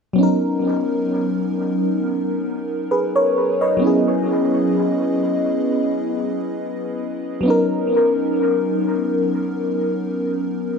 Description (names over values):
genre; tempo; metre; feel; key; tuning
R&B; free time; none; none; B major; A4 = 440 Hz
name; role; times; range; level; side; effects
FM electric piano with soft pad layer; accompaniment; 0.1-10.8 s; F#3 to D#5; -18 LUFS; equal; chorus, phaser, dub echo
room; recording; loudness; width
wet spring reverb, RT60 1.2 s, digital ambience; echo-heavy mix; -18 LUFS; side -5 dB against mid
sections
0.2-10.8 A section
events
none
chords
0.2 Bmaj7; 3.8 E6; 7.5 Bmaj7